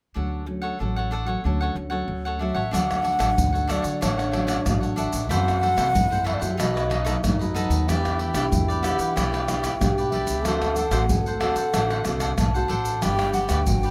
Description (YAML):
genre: samba and choro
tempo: 93 BPM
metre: 4/4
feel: straight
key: D major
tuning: A4 = 440 Hz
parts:
  - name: cavaquinho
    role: accompaniment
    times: 0.1-13.9 s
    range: D4 to F#5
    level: -33 LUFS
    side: equal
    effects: none
  - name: nylon-string guitar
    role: accompaniment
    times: 0.2-13.9 s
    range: F#2 to B4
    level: -34 LUFS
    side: equal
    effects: none
  - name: upright bass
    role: bass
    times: 0.2-13.9 s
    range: G1 to E3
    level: -30 LUFS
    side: equal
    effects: none
  - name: baroque flute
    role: melody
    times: 2.4-13.9 s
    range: C#5 to A5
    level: -29 LUFS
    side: equal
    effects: none
  - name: mellow trombone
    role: second line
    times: 2.7-13.9 s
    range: D4 to A4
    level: -32 LUFS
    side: equal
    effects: none
  - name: egg shaker, surdo, pandeiro and tamborim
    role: percussion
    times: 2.7-13.9 s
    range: none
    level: -28 LUFS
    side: equal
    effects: none
room: moderate small room ambience, RT60 0.5 s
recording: none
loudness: -24 LUFS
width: mono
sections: 0.2-2.7 A section; 2.7-13.9 B section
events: none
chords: 0.2 Dmaj7; 5.3 F#m7b5; 6.6 B7; 7.9 Em7; 10.5 D7; 13.0 Gmaj7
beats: | 0.16 0.80 1.45 2.09 | 2.74 3.38 4.02 4.67 | 5.31 5.95 6.60 7.24 | 7.88 8.53 9.17 9.81 | 10.45 11.10 11.74 12.38 | 13.02 13.67